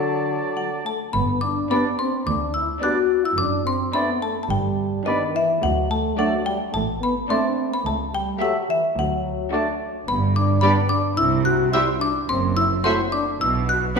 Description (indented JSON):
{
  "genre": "cinematic, playful, whimsical film cue",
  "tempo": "108 BPM",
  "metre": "4/4",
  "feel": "straight",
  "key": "G major",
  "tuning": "A4 = 440 Hz",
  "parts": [
    { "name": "dark clarinet", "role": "second line", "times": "0.0-14.0 s", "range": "D4 to A4", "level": "-32 LUFS", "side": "equal", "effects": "none" },
    { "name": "silver concert flute", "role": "second line", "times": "0.0-14.0 s", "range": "A5 to D6", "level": "-34 LUFS", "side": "left 1 dB", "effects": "none" },
    { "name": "warm oboe", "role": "second line", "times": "0.0-14.0 s", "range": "B4 to E5", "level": "-32 LUFS", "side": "right 3 dB", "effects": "none" },
    { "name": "mellow bassoon", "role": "accompaniment", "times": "0.0-14.0 s", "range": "F#3 to A3", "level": "-32 LUFS", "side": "equal", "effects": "none" },
    { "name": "mellow French horn section", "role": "sustained chords", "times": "0.0-14.0 s", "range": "D3 to F#4", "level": "-25 LUFS", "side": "left 2 dB", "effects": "none" },
    { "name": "xylophone with plastic mallets", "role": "melody", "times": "0.6-14.0 s", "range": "Eb5 to F#6", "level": "-24 LUFS", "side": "left 2 dB", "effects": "none" },
    { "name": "warm studio double bass section", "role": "bass", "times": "1.1-13.9 s", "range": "F#1 to D2", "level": "-28 LUFS", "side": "right 4 dB", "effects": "none" },
    { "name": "warm studio cello section", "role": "bass", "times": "1.2-13.9 s", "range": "C#2 to C3", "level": "-27 LUFS", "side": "right 2 dB", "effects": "none" },
    { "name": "warm studio violin section", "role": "melody", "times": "1.7-14.0 s", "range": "D5 to E5", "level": "-32 LUFS", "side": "left 2 dB", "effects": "none" },
    { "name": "warm studio violin section", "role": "second line", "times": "1.7-14.0 s", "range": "D4 to G4", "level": "-34 LUFS", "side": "equal", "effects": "none" },
    { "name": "warm studio viola section", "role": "accompaniment", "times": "1.7-14.0 s", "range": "G3 to C4", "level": "-30 LUFS", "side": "right 3 dB", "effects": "none" }
  ],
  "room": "wet concert hall reverb, RT60 1.8 s",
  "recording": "minimal, uncompressed stereo recording, faint mains hum",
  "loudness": "-19 LUFS",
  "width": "side -5 dB against mid",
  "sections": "0.0-1.1 A section; 1.1-14.0 B section",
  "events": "none",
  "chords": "0.0 D; 1.1 G; 3.4 D7/F#; 4.5 G; 5.6 D5; 7.9 A7/C#; 9.0 D; 10.1 G; 11.2 C; 12.3 F#7(b5, no3); 13.4 B5",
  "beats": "0.00 0.57 | 1.15 1.71 2.27 2.83 | 3.39 3.95 4.51 5.07 | 5.63 6.19 6.75 7.30 | 7.86 8.41 8.97 9.52 | 10.08 10.63 11.18 11.74 | 12.29 12.85 13.40 13.96"
}